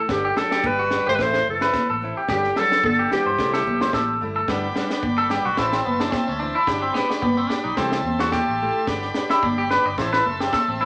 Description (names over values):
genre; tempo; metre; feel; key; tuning
highlife guitar band; 109 BPM; 4/4; swing 55% on 16ths; G major; A4 = 444 Hz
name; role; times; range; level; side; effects
clean electric guitar; arpeggios; 0.0-10.9 s; A3 to D5; -25 LUFS; equal; none
clear clarinet; melody; 0.1-4.2 s; G4 to C5; -24 LUFS; equal; none
breathy trombone; second line; 0.1-4.2 s; D3 to A3; -36 LUFS; equal; none
fingerpicked old ladder-braced acoustic guitar; accompaniment; 0.1-10.9 s; E3 to G4; -33 LUFS; equal; none
fingered electric bass; bass; 0.1-10.9 s; F#1 to G2; -36 LUFS; equal; none
compact cocktail drum kit; drums; 0.1-10.7 s; kick drum, snare drum; -31 LUFS; equal; none
congas; percussion; 0.1-10.9 s; none; -29 LUFS; equal; none
combo organ; sustained chords; 4.5-10.9 s; D5 to C6; -31 LUFS; equal; none
room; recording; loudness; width
moderate large studio reverb, RT60 1.1 s; none; -22 LUFS; mono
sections
0.0-4.5 A section; 4.5-10.9 B section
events
clean electric guitar solo 4.5-10.9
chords
0.1 G; 1.2 Am; 2.3 G; 3.4 C6; 4.5 G; 5.6 Am; 6.7 G; 7.8 C6; 8.9 G; 10.0 Am